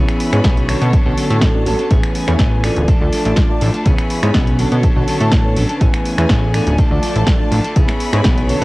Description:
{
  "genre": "filtered disco house",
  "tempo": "123 BPM",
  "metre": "4/4",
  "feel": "straight",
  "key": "unclear",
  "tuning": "A4 = 442 Hz",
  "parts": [
    { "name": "reed electric piano", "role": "accompaniment", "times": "0.0-8.6 s", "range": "D3 to D5", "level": "-21 LUFS", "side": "right 1 dB", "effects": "phaser, sidechain pumping, low-pass filter, cassette tape" },
    { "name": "warm chamber string section", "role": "sustained chords", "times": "0.0-8.6 s", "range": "D3 to B5", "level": "-27 LUFS", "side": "left 1 dB", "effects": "sidechain pumping, low-pass filter, cassette tape" },
    { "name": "electric guitar at the edge of break-up", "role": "riff", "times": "0.0-8.6 s", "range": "E3 to A4", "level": "-23 LUFS", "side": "left 1 dB", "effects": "sidechain pumping, low-pass filter, cassette tape" },
    { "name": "plucky analog bass", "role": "bass", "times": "0.0-8.6 s", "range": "D1 to B2", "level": "-17 LUFS", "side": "equal", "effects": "sidechain pumping, low-pass filter" },
    { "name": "house drum kit", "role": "drums", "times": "0.1-8.6 s", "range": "finger snaps, hi-hat, snare drum", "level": "-22 LUFS", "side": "equal", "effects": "sidechain pumping on hats, studio reverb, cassette tape" },
    { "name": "electronic kick drum", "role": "drums", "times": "0.4-8.4 s", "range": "none", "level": "-15 LUFS", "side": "equal", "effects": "studio reverb, cassette tape" }
  ],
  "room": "digital ambience",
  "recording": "home recording on cassette",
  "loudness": "-12 LUFS",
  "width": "side -20 dB against mid",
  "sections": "0.0-8.6 A section",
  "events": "none",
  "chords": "0.0 C#m7; 0.7 Bm9; 1.9 Amaj9; 2.9 Dm; 3.9 C#m7; 4.6 Bm9; 5.8 Amaj9; 6.8 Dm; 7.8 C#m7"
}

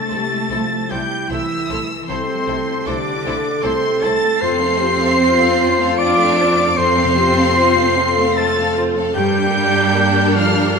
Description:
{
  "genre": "cinematic, emotional film score for orchestra",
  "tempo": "76 BPM",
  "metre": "3/4",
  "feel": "rubato",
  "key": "unclear",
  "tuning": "A4 = 441 Hz",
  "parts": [
    { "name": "warm symphonic violin section", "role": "melody", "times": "0.0-10.8 s", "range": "C6 to D7", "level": "-23 LUFS", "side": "left 1 dB", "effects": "none" },
    { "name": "clear clarinet", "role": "second line", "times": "0.0-10.8 s", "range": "C4 to D5", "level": "-24 LUFS", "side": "equal", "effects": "none" },
    { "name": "clear oboe", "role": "second line", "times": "0.0-10.8 s", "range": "C5 to D6", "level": "-24 LUFS", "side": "right 2 dB", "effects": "none" },
    { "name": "silver concert flute", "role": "second line", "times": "0.0-10.8 s", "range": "C5 to D6", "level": "-23 LUFS", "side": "left 1 dB", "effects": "none" },
    { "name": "mellow French horn section", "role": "sustained chords", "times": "0.0-10.7 s", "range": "F3 to A4", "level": "-22 LUFS", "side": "left 1 dB", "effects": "none" },
    { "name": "concert harp", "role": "arpeggios", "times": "0.0-10.8 s", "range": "F2 to A5", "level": "-27 LUFS", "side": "left 9 dB", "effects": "none" },
    { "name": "warm symphonic cello section", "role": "bass", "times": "0.0-10.8 s", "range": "C3 to D4", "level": "-23 LUFS", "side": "right 3 dB", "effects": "none" },
    { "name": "warm symphonic violin section", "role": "second line", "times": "0.1-10.8 s", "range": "A4 to F5", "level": "-27 LUFS", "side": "left 3 dB", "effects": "none" },
    { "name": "warm symphonic viola section", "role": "accompaniment", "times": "0.1-10.8 s", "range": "G3 to F4", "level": "-25 LUFS", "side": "equal", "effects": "none" },
    { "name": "rich studio double bass section", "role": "bass", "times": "0.1-10.8 s", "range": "C2 to G2", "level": "-25 LUFS", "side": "right 5 dB", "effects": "none" }
  ],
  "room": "wet scoring stage reverb, RT60 1.7 s",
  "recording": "minimal, uncompressed stereo recording",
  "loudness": "-14 LUFS",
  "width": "side -5 dB against mid",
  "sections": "0.0-10.8 A section",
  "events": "none",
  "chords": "0.0 C6; 4.4 F; 9.2 Gmadd9"
}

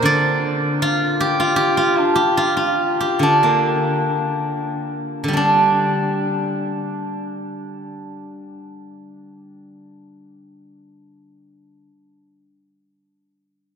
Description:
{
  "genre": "chinese traditional, Chinese solo plucked strings",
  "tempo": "46-80 BPM",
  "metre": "2/4",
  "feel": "rubato",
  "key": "D jue mode",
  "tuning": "A4 = 439 Hz",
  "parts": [
    { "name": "steel-string zither", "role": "solo", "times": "0.0-11.9 s", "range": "D3 to D5", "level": "-17 LUFS", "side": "equal", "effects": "none" }
  ],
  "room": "wet cathedral reverb, RT60 5.2 s",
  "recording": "in a vast, echoing space",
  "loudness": "-16 LUFS",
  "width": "side -7 dB against mid",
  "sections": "0.0-5.4 A section; 5.4-10.2 B section",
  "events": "slowing down 1.6-5.4",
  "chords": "none"
}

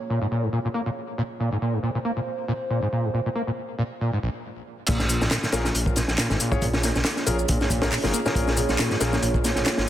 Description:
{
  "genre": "breakbeat, breaks",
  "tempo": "138 BPM",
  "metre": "4/4",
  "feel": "swing 55% on 16ths",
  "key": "Bb minor",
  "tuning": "A4 = 440 Hz",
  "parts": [
    { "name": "dark analog pad", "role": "sustained chords", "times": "0.0-9.9 s", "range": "Bb3 to Db5", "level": "-32 LUFS", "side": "right 2 dB", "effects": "chorus, sidechain pumping" },
    { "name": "overdriven acid bass", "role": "riff", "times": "0.1-9.6 s", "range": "Bb1 to Bb3", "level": "-27 LUFS", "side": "equal", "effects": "distortion, lush chorus, vintage 12-bit sampler grit, ping-pong delay" },
    { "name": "dark detuned saw bass", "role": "bass", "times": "4.9-9.9 s", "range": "Ab1 to Bb1", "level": "-27 LUFS", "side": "equal", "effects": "none" },
    { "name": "crunchy breakbeat drum kit", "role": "drums", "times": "4.9-9.9 s", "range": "crash cymbal, hi-hat, kick drum, snare drum", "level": "-24 LUFS", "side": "equal", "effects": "none" },
    { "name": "electronic shaker and handclaps", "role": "drums", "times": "4.9-9.9 s", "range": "none", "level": "-30 LUFS", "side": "left 2 dB", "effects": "low-pass filter on perc, low-pass filter on snare" },
    { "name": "bright concert grand piano", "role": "stabs", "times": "5.5-9.1 s", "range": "Db4 to Db5", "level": "-30 LUFS", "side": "left 4 dB", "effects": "vintage 12-bit sampler grit, ping-pong delay" }
  ],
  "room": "light reverb, small room ambience",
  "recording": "dense, heavily limited modern master",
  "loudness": "-22 LUFS",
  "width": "side -12 dB against mid",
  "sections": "0.0-4.9 A section; 4.9-9.9 B section",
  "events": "filter sweep on analog synth pad 0.0-4.9; stop 4.4-4.9; drop 4.9-9.9",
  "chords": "0.0 Bbm7"
}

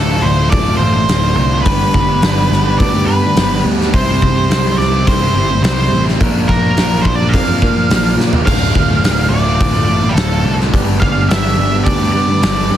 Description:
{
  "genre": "quiet-loud alternative rock",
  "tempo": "106 BPM",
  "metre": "4/4",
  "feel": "straight",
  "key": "D minor",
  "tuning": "A4 = 440 Hz",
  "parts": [
    { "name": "octave-fuzz lead guitar", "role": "melody", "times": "0.0-12.8 s", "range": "G4 to F5", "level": "-18 LUFS", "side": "right 1 dB", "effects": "distortion" },
    { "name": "fuzz guitar", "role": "riff", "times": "0.0-12.8 s", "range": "D2 to C5", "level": "-21 LUFS", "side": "right 9 dB", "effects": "distortion" },
    { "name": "thick fuzz guitar", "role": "riff", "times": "0.0-12.8 s", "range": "D2 to C5", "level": "-19 LUFS", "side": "left 6 dB", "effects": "distortion" },
    { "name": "picked electric bass", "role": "bass", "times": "0.0-12.8 s", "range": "D1 to Bb2", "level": "-17 LUFS", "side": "equal", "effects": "none" },
    { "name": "big rock drum kit", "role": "drums", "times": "0.5-12.6 s", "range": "crash cymbal, hi-hat, kick drum, snare drum, toms", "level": "-16 LUFS", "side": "equal", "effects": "none" }
  ],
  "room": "studio ambience",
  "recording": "dense, heavily limited modern master, vinyl crackle",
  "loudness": "-11 LUFS",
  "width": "side -11 dB against mid",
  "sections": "0.0-12.8 A section",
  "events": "drum fill 8.2",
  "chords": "0.0 Dm; 1.7 G; 3.9 C; 6.2 Bb; 8.5 Dm; 10.7 G"
}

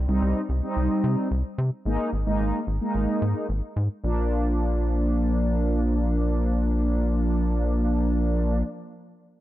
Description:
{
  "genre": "pop",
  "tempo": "110 BPM",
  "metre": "4/4",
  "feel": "straight",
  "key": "Bb mixolydian",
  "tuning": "A4 = 440 Hz",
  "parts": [
    { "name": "rubbery square bass", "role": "bass", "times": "0.0-8.6 s", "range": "Ab1 to C3", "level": "-24 LUFS", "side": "equal", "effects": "none" },
    { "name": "mellow synth brass", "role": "accompaniment", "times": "0.1-8.6 s", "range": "F3 to Eb4", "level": "-26 LUFS", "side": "equal", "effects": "chorus" }
  ],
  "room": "light reverb, digital ambience",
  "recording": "dry, gritty hardware recording, cassette tape",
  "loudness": "-22 LUFS",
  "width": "side -14 dB against mid",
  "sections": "0.0-4.0 A section; 4.0-8.4 B section",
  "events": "none",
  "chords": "0.0 Cm; 1.9 Absus2; 4.0 Bb"
}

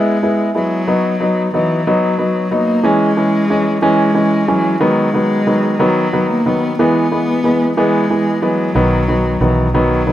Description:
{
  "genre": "pop",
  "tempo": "61 BPM (dotted quarters)",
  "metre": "6/8",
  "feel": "straight",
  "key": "B major",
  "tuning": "A4 = 439 Hz",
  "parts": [
    { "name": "dark cello", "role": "melody", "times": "0.0-10.1 s", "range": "E3 to B3", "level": "-18 LUFS", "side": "left 1 dB", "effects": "none" },
    { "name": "clear baby grand piano", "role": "accompaniment", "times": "0.0-10.1 s", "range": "D#3 to E4", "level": "-14 LUFS", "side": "equal", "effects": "none" },
    { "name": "vintage muted fingered electric bass", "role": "bass", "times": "8.8-10.1 s", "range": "B1", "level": "-17 LUFS", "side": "right 1 dB", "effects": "none" }
  ],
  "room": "light reverb, small room ambience",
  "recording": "rough home demo mix",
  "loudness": "-12 LUFS",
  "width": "side -12 dB against mid",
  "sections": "0.0-10.1 A section",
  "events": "none",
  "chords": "0.0 E; 0.9 B; 2.8 C#m; 4.8 B; 6.8 E; 8.8 B"
}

